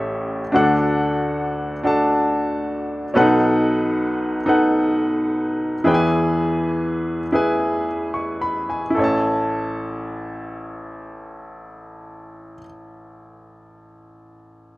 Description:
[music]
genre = gospel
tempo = 35-46 BPM (dotted quarters)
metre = 6/8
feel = straight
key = A major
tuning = A4 = 440 Hz
[part]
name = clear baby grand piano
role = solo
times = 0.0-14.8 s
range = A1 to C#6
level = -18 LUFS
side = equal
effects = none
[sound]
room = little or no reverb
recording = recorded outdoors, with no room sound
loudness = -18 LUFS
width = side -18 dB against mid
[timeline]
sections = 0.0-9.0 A section; 9.0-12.4 B section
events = slowing down 3.1-9.0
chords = 0.0 A7; 0.5 D; 3.1 B7; 5.9 E; 9.0 A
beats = | 0.53 1.84 | 3.15 4.48 | 5.86 7.34 | 8.97 10.69

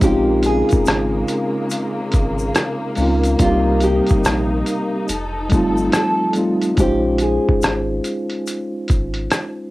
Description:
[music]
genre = lo-fi hip hop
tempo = 71 BPM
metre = 4/4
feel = swing 61% on 16ths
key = Bb dorian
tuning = A4 = 439 Hz
[part]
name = nylon-string guitar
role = melody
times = 0.0-9.5 s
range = F4 to A4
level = -22 LUFS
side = left 1 dB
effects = low-pass filter, cassette tape
[part]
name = mellow tine electric piano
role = accompaniment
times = 0.0-9.7 s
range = G3 to C5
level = -20 LUFS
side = equal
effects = medium stereo tremolo, cassette tape, low-pass filter
[part]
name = dark studio string section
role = sustained chords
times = 0.0-6.8 s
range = C3 to A4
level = -24 LUFS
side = left 1 dB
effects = low-pass filter, cassette tape
[part]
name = warm sub bass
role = bass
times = 0.0-9.3 s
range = F1 to Db2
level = -23 LUFS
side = equal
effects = none
[part]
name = lo-fi sampler-style drum kit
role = drums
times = 0.0-9.6 s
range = hi-hat, kick drum, rim click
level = -19 LUFS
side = equal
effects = vintage 12-bit sampler grit, cassette tape
[part]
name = tube shaker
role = percussion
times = 0.0-9.6 s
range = none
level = -36 LUFS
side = left 5 dB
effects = none
[sound]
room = moderate studio reverb, RT60 0.6 s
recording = home recording on cassette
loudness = -16 LUFS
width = side -18 dB against mid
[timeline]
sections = 0.0-6.8 A section; 6.8-9.7 B section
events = none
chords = 0.0 Bbm11; 3.4 Cm7; 5.1 F7; 6.8 Bbm11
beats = | 0.02 0.86 1.71 2.55 | 3.40 4.24 5.09 5.93 | 6.78 7.62 8.47 9.31

